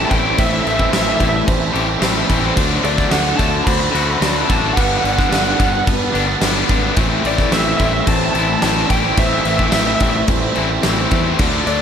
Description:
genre	post-rock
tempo	109 BPM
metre	4/4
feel	straight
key	A dorian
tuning	A4 = 438 Hz
part	lead guitar through a small cranked amp	melody	0.0-11.8 s	D5 to B5	-21 LUFS	right 1 dB	overdrive, digital delay
part	dark symphonic string section	sustained chords	0.0-11.8 s	D4 to A5	-30 LUFS	equal	none
part	twangy electric guitar	arpeggios	0.0-11.8 s	G2 to G4	-26 LUFS	left 4 dB	digital delay
part	vibraphone with medium mallets	arpeggios	0.0-11.8 s	A4 to E5	-30 LUFS	right 6 dB	digital delay
part	distorted electric guitar	riff	0.0-11.8 s	G2 to E4	-22 LUFS	left 12 dB	distortion
part	distorted electric guitar	riff	0.0-11.8 s	G2 to E4	-22 LUFS	right 13 dB	overdrive
part	fuzz fingered electric bass	bass	0.0-11.8 s	G1 to E2	-22 LUFS	equal	overdrive
part	big rock drum kit	drums	0.1-11.8 s	crash cymbal, kick drum, snare drum	-19 LUFS	equal	none
room	studio reverb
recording	none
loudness	-14 LUFS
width	side -8 dB against mid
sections	0.0-11.8 A section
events	none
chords	0.0 Am7; 2.6 D7; 4.8 Gmaj7; 7.0 Am7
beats	| 0.38 0.93 1.47 2.02 | 2.57 3.12 3.66 4.21 | 4.76 5.31 5.86 6.41 | 6.96 7.51 8.07 8.62 | 9.17 9.72 10.28 10.83 | 11.39

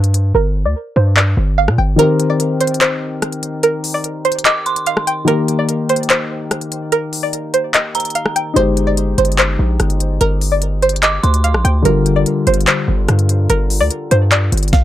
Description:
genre	hip hop, trap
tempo	146 BPM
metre	4/4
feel	half-time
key	G phrygian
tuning	A4 = 439 Hz
part	string-like resonator pluck	melody	0.0-14.8 s	Bb4 to G5	-17 LUFS	right 2 dB	chorus, low-pass filter, tape echo
part	hard-hitting 808-style bass	bass	0.0-2.0, 8.6-14.7 s	G1 to Bb2	-14 LUFS	equal	none
part	trap drum kit	drums	0.0-14.8 s	handclaps, hi-hat, kick drum, rim click, snare drum	-17 LUFS	left 1 dB	none
part	dark baby grand piano	accompaniment	2.0-14.8 s	D3 to C5	-20 LUFS	left 3 dB	low-pass filter
part	dark detuned synth bell	second line	4.4-5.2, 8.0-8.5, 11.0-11.8 s	Bb5 to D6	-22 LUFS	right 4 dB	chorus, tape echo
room	little or no reverb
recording	dark, warm production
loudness	-13 LUFS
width	side -12 dB against mid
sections	0.0-14.8 A section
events	filter sweep 0.0-2.0; hi-hats muted 0.3-2.0; break 2.0-8.6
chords	0.0 G5; 2.0 Cm7; 5.3 Eb; 8.6 Abmaj7/G; 11.9 Gm7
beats	| 0.34 0.76 1.17 1.58 | 1.99 2.40 2.81 3.22 | 3.63 4.04 4.46 4.87 | 5.28 5.69 6.10 6.51 | 6.92 7.33 7.74 8.15 | 8.56 8.98 9.39 9.80 | 10.21 10.62 11.03 11.44 | 11.85 12.26 12.67 13.09 | 13.50 13.91 14.32 14.73

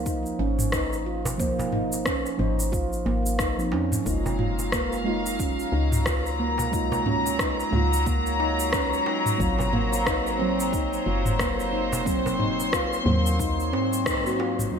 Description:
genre	organic downtempo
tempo	90 BPM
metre	4/4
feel	swing 59% on 16ths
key	unclear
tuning	A4 = 443 Hz
part	muted felt-like synth keys	accompaniment	0.0-14.8 s	Eb2 to C5	-31 LUFS	right 2 dB	chorus, sidechain pumping, low-pass filter, digital delay
part	woody FM bass	bass	0.0-14.7 s	Gb1 to Ab2	-29 LUFS	left 1 dB	tube saturation, sidechain pumping
part	handpan	arpeggios	0.1-14.7 s	Bb3 to F4	-29 LUFS	right 1 dB	digital delay
part	electronic kick drum	drums	0.1-14.2 s	none	-31 LUFS	left 1 dB	none
part	organic electronic drum kit	drums	0.1-14.7 s	rim click, shaker, toms	-29 LUFS	equal	gated reverb
part	darbuka	percussion	0.7-14.6 s	none	-36 LUFS	right 1 dB	none
part	warm studio string section	sustained chords	4.1-14.8 s	Gb3 to C6	-28 LUFS	left 2 dB	vintage 12-bit sampler grit, sidechain pumping
room	moderate plate reverb, RT60 2.8 s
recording	bright 1980s-style digital production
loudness	-22 LUFS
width	side -7 dB against mid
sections	0.0-14.7 A section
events	band accent 14.1-14.4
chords	0.0 Dbmaj9; 4.1 Gbmaj7; 9.4 Ab9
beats	0.06 0.73 | 1.39 2.06 2.73 3.39 | 4.06 4.73 5.39 6.06 | 6.73 7.39 8.06 8.73 | 9.39 10.06 10.73 11.39 | 12.06 12.73 13.39 14.06 | 14.73

